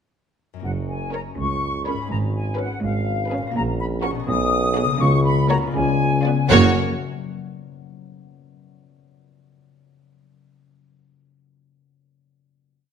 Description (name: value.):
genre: cinematic, playful, whimsical film cue.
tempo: 82 BPM (dotted quarters).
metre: 6/8.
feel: straight.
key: F# major.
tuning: A4 = 440 Hz.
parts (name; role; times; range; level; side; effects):
concert harp; arpeggios; 0.5-6.8 s; F#2 to F#5; -26 LUFS; left 10 dB; none.
bright flute section; second line; 0.6-6.8 s; E#5 to D#6; -25 LUFS; left 2 dB; none.
clear tuba; bass; 0.6-6.7 s; F#1 to C#2; -26 LUFS; right 4 dB; none.
rich studio cello section; bass; 0.6-6.8 s; C#2 to C#3; -28 LUFS; right 3 dB; none.
clear studio double bass section; bass; 0.7-6.8 s; F#1 to C#2; -26 LUFS; right 3 dB; none.
rich studio violin section; melody; 1.1-6.8 s; G#4 to D5; -26 LUFS; left 2 dB; none.
warm studio violin section; second line; 1.1-6.8 s; E#4 to A#4; -28 LUFS; left 2 dB; none.
rich studio viola section; accompaniment; 1.1-6.8 s; A#3 to C#4; -24 LUFS; right 4 dB; none.
room: wet recital hall reverb, RT60 1.4 s.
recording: none.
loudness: -18 LUFS.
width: side -7 dB against mid.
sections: 0.7-6.5 A section; 6.5-8.0 final chord.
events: none.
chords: 0.7 F#; 2.1 C#7/G#; 3.6 F#/A#; 4.3 B6; 5.0 F#/C#; 5.8 C#7b9; 6.5 F#.